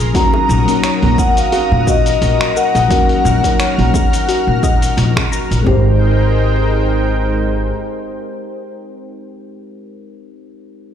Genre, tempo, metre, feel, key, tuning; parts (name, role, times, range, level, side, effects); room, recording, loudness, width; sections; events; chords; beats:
sunset chillout; 87 BPM; 4/4; swing 55% on 16ths; A4 = 441 Hz
mellow FM electric piano; accompaniment; 0.0-10.9 s; Gb3 to Bb4; -22 LUFS; moving between left 7 dB and right 3 dB; chorus, auto-pan, digital delay
lush unison pad; sustained chords; 0.0-8.7 s; Ab3 to F6; -22 LUFS; right 1 dB; chorus
soft round pluck; arpeggios; 0.0-6.0 s; Gb4 to Bb5; -24 LUFS; left 2 dB; chorus, digital delay
upright bass; bass; 0.0-7.7 s; Ab1 to Bb2; -15 LUFS; equal
dusty soul sampler-style drum kit; drums; 0.0-5.6 s; finger snaps, hi-hat, shaker; -23 LUFS; left 1 dB
electronic kick drum; drums; 0.1-5.8 s; -17 LUFS; right 1 dB; overdrive
vibraphone with soft mallets; melody; 0.2-8.7 s; C5 to Bb5; -19 LUFS; left 3 dB; tape echo
bongos and congas; percussion; 0.3-5.3 s; -23 LUFS; right 5 dB
light reverb, digital ambience; played on a big sound system in a bare room, large studio reverb; -11 LUFS; side -9 dB against mid
0.0-5.7 A section; 5.7-8.4 B section
0.1 Gb6/Bb; 5.7 Abmaj9
| 0.15 0.84 1.53 2.22 | 2.91 3.60 4.29 4.97 | 5.66 6.35 7.04 7.73